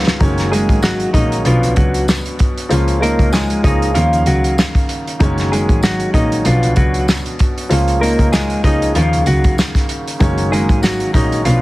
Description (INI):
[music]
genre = hip hop, boom-bap hip-hop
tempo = 96 BPM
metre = 4/4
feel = swing 55% on 16ths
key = F# major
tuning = A4 = 439 Hz
[part]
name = warm upright piano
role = accompaniment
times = 0.0-11.6 s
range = B2 to E#5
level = -19 LUFS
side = equal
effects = high-pass filter, low-pass filter
[part]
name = muted double bass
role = bass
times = 0.0-11.6 s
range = F#1 to D#2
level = -18 LUFS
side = equal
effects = none
[part]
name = warm soul drum kit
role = drums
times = 0.1-11.6 s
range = hi-hat, kick drum, snare drum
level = -16 LUFS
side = equal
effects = none
[part]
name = clean electric guitar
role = melody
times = 0.5-11.6 s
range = E#3 to D#5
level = -19 LUFS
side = equal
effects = spring reverb, high-pass filter, low-pass filter
[part]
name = tambourine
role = percussion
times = 0.8-11.0 s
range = none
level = -31 LUFS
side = left 3 dB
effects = none
[sound]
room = small room ambience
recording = heavily compressed radio sound, multiband compression, vinyl crackle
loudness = -12 LUFS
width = side -18 dB against mid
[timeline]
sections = 0.2-11.6 A section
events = drum fill 0.0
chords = 0.2 F#6; 1.5 Bmadd9; 2.7 A#m7/C#; 4.0 D#m7; 5.2 F#6; 6.5 Bmadd9; 7.7 A#m7/C#; 9.0 D#m7; 10.2 F#6